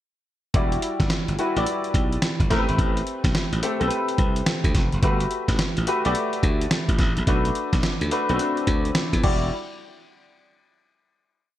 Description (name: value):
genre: R&B, new jack swing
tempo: 107 BPM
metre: 4/4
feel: swing 63% on 16ths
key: E minor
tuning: A4 = 440 Hz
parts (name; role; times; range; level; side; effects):
- clear concert grand piano; accompaniment; 0.5-9.5 s; G3 to D5; -25 LUFS; left 2 dB; analog chorus
- glassy slap bass; bass; 0.5-9.5 s; E1 to E2; -25 LUFS; equal; none
- dusty soul sampler-style drum kit; drums; 0.5-9.4 s; crash cymbal, hi-hat, kick drum, snare drum; -23 LUFS; equal; gated reverb
room: light reverb, digital ambience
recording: bright 1980s-style digital production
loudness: -20 LUFS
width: side -13 dB against mid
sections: 0.5-9.5 verse; 9.5-11.6 final hit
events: none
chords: 0.5 Em9; 2.5 Am9; 5.0 Gmaj9; 7.3 Bm7; 9.2 Em9; 9.5 N.C.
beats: | 0.54 1.10 1.67 2.23 | 2.79 3.35 3.91 4.47 | 5.03 5.59 6.15 6.71 | 7.27 7.83 8.39 8.95 | 9.52